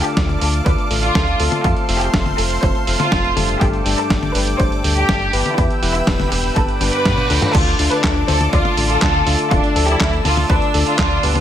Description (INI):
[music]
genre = italo disco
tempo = 122 BPM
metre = 4/4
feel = straight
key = D dorian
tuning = A4 = 440 Hz
[part]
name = rich studio violin section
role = melody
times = 0.0-11.4 s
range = D4 to D5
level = -21 LUFS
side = equal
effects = tape echo
[part]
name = lush unison pad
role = sustained chords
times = 0.0-11.4 s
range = A4 to E6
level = -24 LUFS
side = equal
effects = chorus
[part]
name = tine electric piano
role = stabs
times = 0.0-11.4 s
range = G2 to B4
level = -23 LUFS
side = left 4 dB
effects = none
[part]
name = round analog bass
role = bass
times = 0.0-11.4 s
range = D1 to G2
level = -20 LUFS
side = equal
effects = tube saturation
[part]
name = dusty soul sampler-style drum kit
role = drums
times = 0.0-11.4 s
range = crash cymbal, handclaps, hi-hat, snare drum, toms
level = -21 LUFS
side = equal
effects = small room ambience
[part]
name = electronic kick drum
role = drums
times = 0.2-11.1 s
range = none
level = -20 LUFS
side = equal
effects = overdrive, small room ambience
[part]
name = reverse cymbal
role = sound effects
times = 6.8-7.5 s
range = none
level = -27 LUFS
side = equal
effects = none
[sound]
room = light reverb, digital ambience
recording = none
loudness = -14 LUFS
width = side -10 dB against mid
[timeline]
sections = 0.0-7.5 A section; 7.5-11.4 B section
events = reverse cymbal 6.8-7.5; drum fill 6.8-7.5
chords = 0.0 Dm; 1.6 F; 3.6 Gsus2; 5.6 Em; 6.6 G; 7.5 Dm